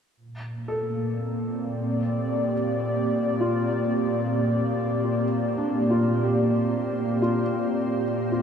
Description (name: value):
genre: ambient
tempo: 55 BPM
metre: 4/4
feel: straight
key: Bb major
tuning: A4 = 439 Hz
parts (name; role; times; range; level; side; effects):
- organ-like drone; drone; 1.3-8.4 s; Bb3 to C5; -42 LUFS; right 3 dB; ensemble chorus, built-in reverb
- airy breathy pad; sustained chords; 0.2-8.4 s; Bb2 to D5; -23 LUFS; equal; chorus
- felt-muted upright piano; arpeggios; 0.7-8.4 s; D4 to A4; -31 LUFS; left 1 dB; ping-pong delay
room: wet cathedral reverb, RT60 7.0 s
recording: in a vast, echoing space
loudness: -22 LUFS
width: side -7 dB against mid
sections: 0.1-8.4 A section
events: fade-in on synth drone 0.1-8.4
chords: 0.1 Bb69